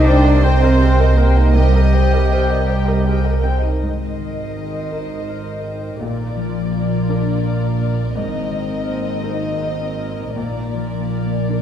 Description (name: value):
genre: cinematic, emotional film score for orchestra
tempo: 54 BPM (dotted quarters)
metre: 6/8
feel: rubato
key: Ab lydian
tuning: A4 = 440 Hz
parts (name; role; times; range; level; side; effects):
- dark studio violin section; melody; 0.0-11.6 s; D5 to G5; -26 LUFS; left 2 dB; none
- mellow hollow flute section; second line; 0.0-3.5 s; G4 to D5; -29 LUFS; left 3 dB; none
- warm oboe; second line; 0.0-3.5 s; G4 to D5; -29 LUFS; right 2 dB; none
- warm symphonic violin section; second line; 0.0-11.6 s; Bb4 to Eb5; -30 LUFS; equal; none
- clear concert grand piano; accompaniment; 0.0-11.6 s; C2 to D5; -26 LUFS; equal; none
- dark symphonic viola section; accompaniment; 0.0-11.6 s; Bb3 to C5; -29 LUFS; equal; none
- mellow French horn section; sustained chords; 0.0-3.4 s; G3 to D4; -26 LUFS; equal; none
- concert harp; arpeggios; 0.0-11.6 s; Ab2 to C5; -24 LUFS; left 4 dB; none
- rich symphonic double bass section; bass; 0.0-11.6 s; Ab1 to C2; -18 LUFS; right 1 dB; none
- warm symphonic cello section; bass; 0.0-11.6 s; Ab2 to D4; -25 LUFS; right 2 dB; none
room: wet scoring stage reverb, RT60 1.5 s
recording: heard from further back in the room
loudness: -16 LUFS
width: side -10 dB against mid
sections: 0.0-3.8 A section; 3.8-11.6 B section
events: none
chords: 0.0 Cm7; 3.8 Abadd9; 6.0 Bb; 8.2 Abadd9; 10.4 Bb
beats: 0.44 | 1.56 2.70 | 3.83 4.93 | 6.02 7.09 | 8.16 9.24 | 10.36 11.48